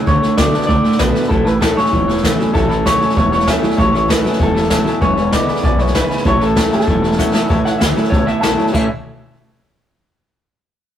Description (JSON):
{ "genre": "rockabilly", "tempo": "194 BPM", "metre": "4/4", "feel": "straight", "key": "A major", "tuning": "A4 = 441 Hz", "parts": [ { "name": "picked steel-string acoustic guitar", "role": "accompaniment", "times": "0.0-8.9 s", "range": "E2 to F#4", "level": "-22 LUFS", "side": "left 2 dB", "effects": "none" }, { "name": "electric guitar through a small old amp", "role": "riff", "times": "0.0-8.9 s", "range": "E2 to E4", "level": "-18 LUFS", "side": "right 2 dB", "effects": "none" }, { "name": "electric guitar through a small old amp", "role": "melody", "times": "0.1-8.9 s", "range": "A4 to A5", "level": "-18 LUFS", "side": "left 2 dB", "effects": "none" }, { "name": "upright bass", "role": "bass", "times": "0.1-8.9 s", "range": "E1 to E2", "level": "-20 LUFS", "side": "equal", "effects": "none" }, { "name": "jazz brush drum kit", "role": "drums", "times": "0.1-8.8 s", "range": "crash cymbal, hi-hat, kick drum, snare drum", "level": "-18 LUFS", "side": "left 1 dB", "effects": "none" }, { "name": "clear upright piano", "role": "accompaniment", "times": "2.5-8.9 s", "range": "B4 to B5", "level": "-26 LUFS", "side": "left 4 dB", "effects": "none" } ], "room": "light reverb", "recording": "rough rehearsal-room recording", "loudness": "-12 LUFS", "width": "side -10 dB against mid", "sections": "0.0-7.5 A section; 7.5-8.7 B section; 8.7-10.0 C section", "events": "drum fill 7.2-7.5", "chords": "0.1 D; 1.3 A; 5.0 E7; 6.3 A", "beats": "| 0.07 0.38 0.69 1.00 | 1.31 1.61 1.92 2.23 | 2.54 2.85 3.16 3.47 | 3.78 4.09 4.40 4.71 | 5.01 5.33 5.63 5.94 | 6.25 6.56 6.87 7.18 | 7.49 7.80 8.11 8.42 | 8.73" }